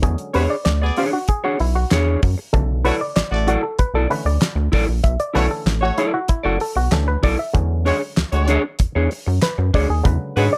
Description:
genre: funk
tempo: 96 BPM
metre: 4/4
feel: straight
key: B dorian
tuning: A4 = 440 Hz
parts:
  - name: muted clav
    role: stabs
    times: 0.0-10.6 s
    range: C#3 to E5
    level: -26 LUFS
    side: equal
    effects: auto-wah
  - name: rubbery square bass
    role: bass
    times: 0.0-10.5 s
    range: F#1 to G#2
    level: -22 LUFS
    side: equal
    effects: none
  - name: damped 70s drum kit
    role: drums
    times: 0.0-10.5 s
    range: handclaps, hi-hat, kick drum, snare drum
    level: -23 LUFS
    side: equal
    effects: none
  - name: warm horn section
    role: second line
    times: 0.3-10.5 s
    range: G#3 to D5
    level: -26 LUFS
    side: equal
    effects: none
  - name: semi-hollow electric guitar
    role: accompaniment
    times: 0.3-10.5 s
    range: D4 to D5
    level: -24 LUFS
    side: equal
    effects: none
room: light reverb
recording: dark, warm production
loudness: -19 LUFS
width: mono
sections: 0.0-10.6 A section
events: clav solo 0.0-10.6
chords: 0.0 E13; 2.5 Bm11; 7.6 E13

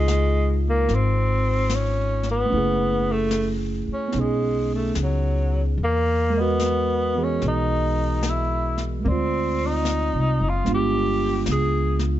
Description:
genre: jazz ballad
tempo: 74 BPM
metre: 4/4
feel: swing 69% on 8ths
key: unclear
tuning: A4 = 440 Hz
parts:
  - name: breathy tenor saxophone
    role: melody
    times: 0.0-12.0 s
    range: F#3 to Ab4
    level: -24 LUFS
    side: left 1 dB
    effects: none
  - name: barky tine electric piano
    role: accompaniment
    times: 0.0-12.2 s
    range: E3 to D#5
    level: -26 LUFS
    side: right 5 dB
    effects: none
  - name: upright bass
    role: bass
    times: 0.0-12.2 s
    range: Gb1 to E2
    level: -24 LUFS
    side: left 1 dB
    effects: none
  - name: jazz brush drum kit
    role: drums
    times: 0.1-12.2 s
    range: brushed snare drum, hi-hat, snare drum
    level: -34 LUFS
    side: left 6 dB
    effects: none
room: light reverb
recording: dark, warm production, nothing above 7.9 kHz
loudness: -20 LUFS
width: side -13 dB against mid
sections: 0.0-12.2 A section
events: none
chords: 0.0 Dbmaj9; 2.5 Gbm7; 4.1 B69; 5.8 Emaj9#11; 9.1 Dm7b5; 10.7 G7b9

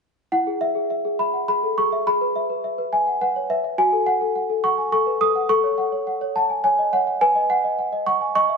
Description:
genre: classical, lullaby for celesta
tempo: 105 BPM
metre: 3/4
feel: straight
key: E major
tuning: A4 = 441 Hz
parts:
  - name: small celesta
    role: solo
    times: 0.3-8.6 s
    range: E4 to D#6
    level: -18 LUFS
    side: equal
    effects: none
room: light reverb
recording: nothing above 11.0 kHz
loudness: -19 LUFS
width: side -5 dB against mid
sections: 0.3-8.6 A section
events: none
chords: 0.3 E; 2.1 E/G#; 3.8 F#m; 5.5 F#m/A; 7.2 B

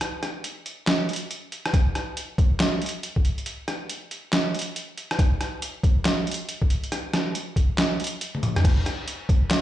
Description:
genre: dubstep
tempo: 139 BPM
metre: 4/4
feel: swing 62% on 16ths, half-time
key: none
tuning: none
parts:
  - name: trip hop sampler-style drum kit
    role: drums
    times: 0.0-9.6 s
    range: crash cymbal, handclaps, hi-hat, rim click, snare drum, toms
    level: -25 LUFS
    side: equal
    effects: overdrive
  - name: electronic kick drum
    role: drums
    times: 1.7-9.4 s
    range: none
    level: -20 LUFS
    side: equal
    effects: overdrive
room: light reverb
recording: played on a big sound system in a bare room, large studio reverb, nothing above 10.7 kHz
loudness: -22 LUFS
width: side -13 dB against mid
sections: 0.0-9.6 A section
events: kick drops out 8.2-8.6; drum fill 8.3-8.6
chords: none

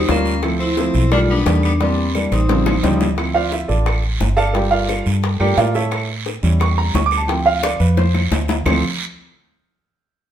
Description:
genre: Afro-Cuban jazz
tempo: 175 BPM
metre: 4/4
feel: straight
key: D minor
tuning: A4 = 440 Hz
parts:
  - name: vibraphone with medium hard mallets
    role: melody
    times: 0.0-3.0 s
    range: C4 to F4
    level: -22 LUFS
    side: left 1 dB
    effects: none
  - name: edgy tenor saxophone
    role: second line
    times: 0.0-3.0 s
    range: G3 to D4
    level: -26 LUFS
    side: left 2 dB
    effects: none
  - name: fingered electric bass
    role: bass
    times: 0.0-8.8 s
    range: G1 to A2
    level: -18 LUFS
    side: equal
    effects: none
  - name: warm baby grand piano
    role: accompaniment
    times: 0.1-8.8 s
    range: C#3 to D6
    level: -19 LUFS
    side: right 1 dB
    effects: none
  - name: bongos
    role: percussion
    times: 0.1-8.7 s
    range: none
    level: -24 LUFS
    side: left 4 dB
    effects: none
  - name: guiro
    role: percussion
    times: 0.1-8.7 s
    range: none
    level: -31 LUFS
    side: right 6 dB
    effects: none
  - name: claves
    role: percussion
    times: 0.4-8.7 s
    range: none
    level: -29 LUFS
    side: right 3 dB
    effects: none
room: moderate studio reverb, RT60 0.9 s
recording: band playing live in one room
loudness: -15 LUFS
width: side -10 dB against mid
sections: 0.0-3.2 A section; 3.2-8.7 B section; 8.7-10.0 C section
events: drum fill 2.3-3.2, 7.6-8.7; grand piano fill 2.7-3.2; grand piano solo 3.2-8.7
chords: 0.4 Dm9; 1.1 B7alt; 1.8 Em7b5; 2.5 A7alt; 3.2 Dm7; 4.5 Gm7; 5.9 A7; 7.3 Dm7

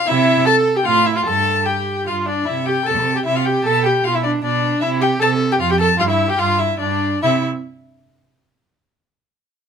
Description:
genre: quick classical-period movement for string quartet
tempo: 152 BPM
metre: 3/4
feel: rubato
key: C major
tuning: A4 = 441 Hz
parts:
  - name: rich violin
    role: melody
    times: 0.0-7.4 s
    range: D5 to A5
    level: -19 LUFS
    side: left 7 dB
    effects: none
  - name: warm violin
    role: second line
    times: 0.1-7.4 s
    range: D4 to A4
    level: -22 LUFS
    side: left 1 dB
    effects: none
  - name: warm viola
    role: accompaniment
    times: 0.1-7.4 s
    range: D4 to A4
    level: -21 LUFS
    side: right 3 dB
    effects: none
  - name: rich cello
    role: bass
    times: 0.1-7.5 s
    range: F2 to C3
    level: -21 LUFS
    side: right 6 dB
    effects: none
room: light reverb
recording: minimal, uncompressed stereo recording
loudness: -15 LUFS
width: side -7 dB against mid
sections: 0.0-7.2 A section; 7.2-8.4 B section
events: none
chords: 0.1 C; 0.9 F/A; 1.3 G5; 2.5 C6; 3.7 G9/B; 4.8 C6; 5.6 Fadd9; 6.0 G5; 7.2 C

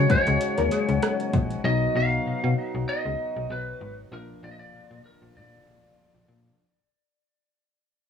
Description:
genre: 1980s-style pop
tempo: 97 BPM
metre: 4/4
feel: swing 55% on 16ths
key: unclear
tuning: A4 = 444 Hz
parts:
  - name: lightly driven lead guitar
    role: melody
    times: 0.0-6.2 s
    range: A#4 to E#5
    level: -27 LUFS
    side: equal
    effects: cassette tape, analog delay
  - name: FM electric piano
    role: accompaniment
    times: 0.0-6.6 s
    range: E#3 to F#4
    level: -32 LUFS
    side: left 6 dB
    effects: chorus, cassette tape
  - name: pedal harmonium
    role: sustained chords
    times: 0.0-6.6 s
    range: G#2 to F#4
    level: -35 LUFS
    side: right 1 dB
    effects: cassette tape
  - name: funky polysynth comp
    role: stabs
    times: 0.0-0.9 s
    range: G#3 to A#4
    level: -31 LUFS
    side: left 2 dB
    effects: chorus, cassette tape, analog delay
  - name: slap-like FM bass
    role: bass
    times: 0.0-6.5 s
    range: G#1 to B2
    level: -25 LUFS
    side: left 2 dB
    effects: none
  - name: 80s electronic pad drums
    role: drums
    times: 0.1-1.6 s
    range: hi-hat, kick drum, rim click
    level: -25 LUFS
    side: left 1 dB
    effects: overdrive, cassette tape
room: moderate small room reverb, RT60 0.5 s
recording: home recording on cassette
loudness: -22 LUFS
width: side -7 dB against mid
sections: 0.0-6.6 A section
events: fade-out 0.0-6.6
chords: 0.0 C#sus4; 1.6 B; 4.1 A#

